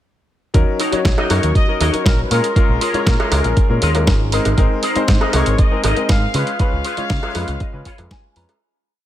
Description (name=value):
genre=nu-disco, nu disco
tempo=119 BPM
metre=4/4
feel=straight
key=Eb minor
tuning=A4 = 440 Hz
part: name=warm grand piano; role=accompaniment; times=0.5-8.5 s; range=Gb3 to Db5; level=-22 LUFS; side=left 3 dB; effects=sidechain pumping, digital delay
part: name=deep dub picked electric bass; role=bass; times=0.5-8.4 s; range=Ab1 to Db3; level=-19 LUFS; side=equal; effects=none
part: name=dusty soul sampler-style drum kit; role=drums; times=0.5-8.6 s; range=hi-hat, snare drum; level=-23 LUFS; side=right 1 dB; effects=none
part: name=electronic kick drum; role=drums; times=0.5-8.2 s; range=none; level=-16 LUFS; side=equal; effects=none
part: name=electric guitar with an envelope filter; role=riff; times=0.8-8.6 s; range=Eb4 to Bb5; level=-24 LUFS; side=left 1 dB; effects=ensemble chorus
part: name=cowbell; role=percussion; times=1.2-8.6 s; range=none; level=-26 LUFS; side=right 3 dB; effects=none
part: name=warm trumpet section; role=melody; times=1.3-8.1 s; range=Bb4 to F5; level=-25 LUFS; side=left 2 dB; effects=tape echo
room=small room reverb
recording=none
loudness=-14 LUFS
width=side -12 dB against mid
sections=0.5-8.6 drop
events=drop 0.5-8.6; fade-out 5.9-8.6; clean electric guitar fill 7.1-8.6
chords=0.5 Ebm7; 2.3 Bbm7; 4.3 Abadd9; 6.3 Db7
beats=| 0.55 1.05 1.55 2.06 | 2.56 3.07 3.57 4.07 | 4.58 5.08 5.59 6.09 | 6.59 7.10 7.60 8.11